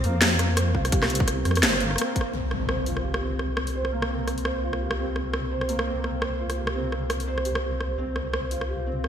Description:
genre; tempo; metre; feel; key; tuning
half-time drum and bass; 170 BPM; 4/4; swing 58% on 16ths, half-time; unclear; A4 = 439 Hz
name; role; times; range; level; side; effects
felt-muted upright piano; arpeggios; 0.0-9.1 s; Bb3 to C5; -29 LUFS; right 2 dB; ensemble chorus, low-pass filter, ping-pong delay
deep soft wobble bass; bass; 0.0-9.1 s; G1 to F2; -28 LUFS; equal; chorus
drum and bass drum kit; drums; 0.0-9.1 s; hi-hat, rim click, snare drum; -27 LUFS; equal; overdrive, studio reverb, gated reverb
electronic kick drum; drums; 0.7-2.2 s; none; -25 LUFS; equal; overdrive, studio reverb
impact; sound effects; 2.3-3.7 s; none; -33 LUFS; left 1 dB; none
room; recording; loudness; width
moderate lush hall reverb, RT60 2.0 s; bright 1980s-style digital production; -23 LUFS; side -8 dB against mid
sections
0.0-2.3 A section; 2.3-9.1 B section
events
drop 0.0-2.3; impact 2.3-3.7; filter sweep on felt piano 2.3-9.1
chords
0.0 C5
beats
0.22 0.57 | 0.92 1.28 1.63 1.98 | 2.34 2.69 3.04 3.40 | 3.75 4.10 4.45 4.81 | 5.16 5.51 5.87 6.22 | 6.57 6.92 7.28 7.63 | 7.98 8.34 8.69 9.04

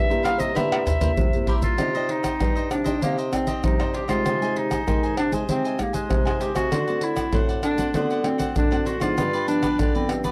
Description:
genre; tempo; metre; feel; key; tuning
samba and choro; 98 BPM; 4/4; straight; C minor; A4 = 442 Hz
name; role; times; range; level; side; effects
clear clarinet; melody; 0.0-10.3 s; Ab3 to F5; -28 LUFS; equal; none
nylon-string guitar; accompaniment; 0.0-10.3 s; G2 to D5; -32 LUFS; equal; none
mellow bassoon; bass; 0.0-10.3 s; G2 to Eb3; -30 LUFS; equal; none
cavaquinho; accompaniment; 0.1-10.3 s; D4 to Ab5; -35 LUFS; equal; none
egg shaker, pandeiro, tamborim and surdo; percussion; 0.1-10.3 s; none; -27 LUFS; equal; none
room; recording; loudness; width
small room reverb; dry, close 1970s-style studio recording; -23 LUFS; mono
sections
0.0-1.8 A section; 1.8-10.3 B section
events
drum fill 0.6-1.8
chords
0.0 C7; 1.8 Cmadd9; 4.3 Abmaj7/C; 6.7 D7; 9.2 G7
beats
0.56 1.18 | 1.79 2.41 3.02 3.64 | 4.25 4.87 5.48 6.10 | 6.71 7.33 7.94 8.56 | 9.17 9.79

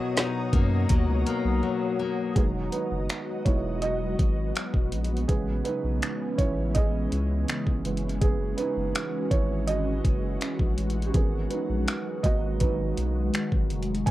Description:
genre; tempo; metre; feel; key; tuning
contemporary R&B; 82 BPM; 4/4; straight; G# minor; A4 = 441 Hz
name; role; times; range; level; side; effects
felt-muted upright piano; accompaniment; 0.0-14.1 s; B2 to G#5; -32 LUFS; right 5 dB; cassette tape
ethereal airy pad; sustained chords; 0.0-14.1 s; C#3 to D#6; -32 LUFS; left 1 dB; ensemble chorus, built-in reverb, sidechain pumping, cassette tape
picked steel-string acoustic guitar; arpeggios; 0.0-2.9 s; B2 to F#4; -28 LUFS; left 6 dB; cassette tape, analog delay
smooth R&B drum kit; drums; 0.2-14.1 s; finger snaps, hi-hat, kick drum, snare drum; -25 LUFS; equal; none
saturated sub bass; bass; 0.5-14.1 s; E1 to F#2; -28 LUFS; equal; none
room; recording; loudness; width
light reverb; home recording on cassette; -24 LUFS; side -15 dB against mid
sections
0.0-2.4 A section; 2.4-14.1 B section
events
break 1.6-2.4; felt piano solo 2.4-14.1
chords
0.0 Bmaj7; 2.4 Emaj9; 5.3 Amaj9; 7.8 F#9sus4; 11.1 G#m9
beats
0.17 0.90 1.63 | 2.36 3.09 3.83 4.56 | 5.29 6.02 6.75 7.48 | 8.21 8.95 9.68 10.41 | 11.14 11.87 12.61 13.34 | 14.07

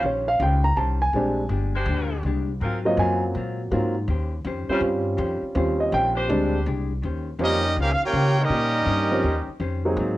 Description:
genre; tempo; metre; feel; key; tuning
jazz, big band swing; 163 BPM; 4/4; swing 66% on 8ths; Eb mixolydian, Eb major from 7.0 s; A4 = 438 Hz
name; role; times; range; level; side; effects
vintage hollow-body jazz guitar; accompaniment; 0.0-10.2 s; Ab2 to C5; -32 LUFS; left 5 dB; cassette tape
warm concert grand piano; accompaniment; 0.0-10.2 s; F3 to Bb5; -23 LUFS; right 1 dB; cassette tape, plate reverb
upright bass; bass; 0.0-10.2 s; G1 to Db3; -25 LUFS; left 1 dB; none
bright saxophone section; sustained chords; 1.7-6.6 s; Gb3 to C5; -29 LUFS; left 1 dB; cassette tape
brilliant trumpet section; melody; 7.4-9.5 s; Db4 to G5; -23 LUFS; right 1 dB; cassette tape, plate reverb
bright trombone section; second line; 7.4-9.5 s; G3 to G4; -29 LUFS; right 2 dB; cassette tape, plate reverb
room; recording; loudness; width
light reverb; home recording on cassette; -21 LUFS; side -16 dB against mid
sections
0.0-7.0 A section; 7.0-10.2 B section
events
grand piano solo 0.0-7.0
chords
0.0 Eb13; 1.1 Bb13; 2.6 Ab13; 4.1 Eb13; 6.3 Bb13; 7.0 Eb13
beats
0.04 0.41 0.77 | 1.14 1.51 1.88 2.25 | 2.61 2.98 3.35 3.72 | 4.08 4.45 4.82 5.19 | 5.55 5.92 6.29 6.66 | 7.03 7.39 7.76 8.13 | 8.50 8.87 9.23 9.60 | 9.97

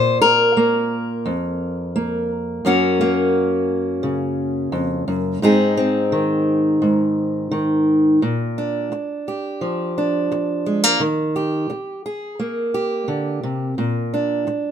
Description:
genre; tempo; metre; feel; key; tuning
folk, solo fingerstyle acoustic guitar; 86 BPM; 4/4; straight; unclear; A4 = 439 Hz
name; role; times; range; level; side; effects
fingerpicked steel-string acoustic guitar; solo; 0.0-14.7 s; F2 to C5; -17 LUFS; equal; none
room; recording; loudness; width
light reverb; minimal, uncompressed stereo recording; -17 LUFS; side -9 dB against mid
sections
0.0-8.2 A section; 8.2-14.7 B section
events
none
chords
0.0 Bb5; 2.7 Gb; 5.4 Ab; 8.2 Bb; 11.0 Eb; 13.8 Bb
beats
0.57 1.27 1.96 | 2.65 3.34 4.04 4.73 | 5.42 6.12 6.82 7.52 | 8.22 8.92 9.62 10.31 | 11.01 11.71 12.40 13.09 | 13.78 14.47

